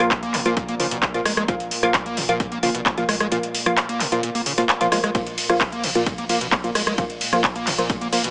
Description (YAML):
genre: driving peak-time techno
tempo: 131 BPM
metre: 4/4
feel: straight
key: unclear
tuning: A4 = 443 Hz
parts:
  - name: wavetable chord stab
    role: stabs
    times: 0.0-8.2 s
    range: F3 to F4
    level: -26 LUFS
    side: equal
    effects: vintage 12-bit sampler grit, sidechain pumping, tape echo
  - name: saturated sub bass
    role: bass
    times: 0.0-8.3 s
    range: Bb1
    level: -42 LUFS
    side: equal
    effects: tube saturation, sidechain pumping, low-pass filter
  - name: deep dark ambient pad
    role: drone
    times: 0.0-8.3 s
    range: Bb2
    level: -36 LUFS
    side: equal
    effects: chorus, built-in reverb, sidechain pumping
  - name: techno drum kit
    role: drums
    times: 0.0-8.3 s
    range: handclaps, hi-hat, ride cymbal, rim click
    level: -25 LUFS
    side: equal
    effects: sidechain pumping on hats, sidechain pumping on cymbals
  - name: electronic kick drum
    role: drums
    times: 0.1-8.0 s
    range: none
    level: -30 LUFS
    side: equal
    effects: none
  - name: screaming distorted acid line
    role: riff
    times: 0.2-8.3 s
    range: Bb2 to Bb3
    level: -30 LUFS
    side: equal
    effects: distortion, analog chorus, sidechain pumping, tape echo
room: light reverb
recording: small speaker sound, faint mains hum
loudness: -22 LUFS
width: mono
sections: 0.0-8.3 A section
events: none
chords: 0.0 Bb5